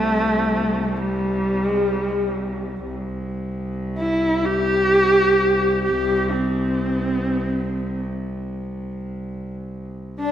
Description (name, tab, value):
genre	mongolian traditional, Mongolian folk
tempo	free time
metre	none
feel	none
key	C gong mode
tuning	A4 = 435 Hz
part	clear horsehead fiddle	melody	0.0-10.3 s	G3 to G4	-19 LUFS	equal	none
part	rich cello	drone	0.0-10.3 s	C2	-26 LUFS	equal	none
part	breathy bright low xiao	second line	10.2-10.3 s	D4	-24 LUFS	left 8 dB	none
room	wet concert hall reverb, RT60 2.1 s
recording	heard from further back in the room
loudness	-19 LUFS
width	side -10 dB against mid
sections	0.0-10.2 A section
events	none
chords	none